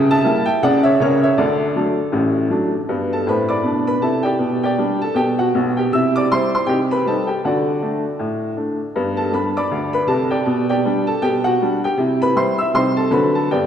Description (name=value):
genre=jazz, stride piano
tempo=159 BPM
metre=4/4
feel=swing 59% on 8ths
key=G major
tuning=A4 = 438 Hz
part: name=bright upright piano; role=solo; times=0.0-13.7 s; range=A1 to E6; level=-16 LUFS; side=equal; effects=none
room=wet concert hall reverb, RT60 2.2 s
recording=recorded in a church or concert hall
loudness=-16 LUFS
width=side -9 dB against mid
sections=0.0-2.9 A section; 2.9-13.7 B section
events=none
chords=0.0 C#dim7; 1.4 D; 2.9 G; 4.4 G/B; 5.9 C; 6.7 Cm; 7.4 D; 8.9 G; 10.5 G/B; 12.0 C; 12.7 Cm; 13.1 D7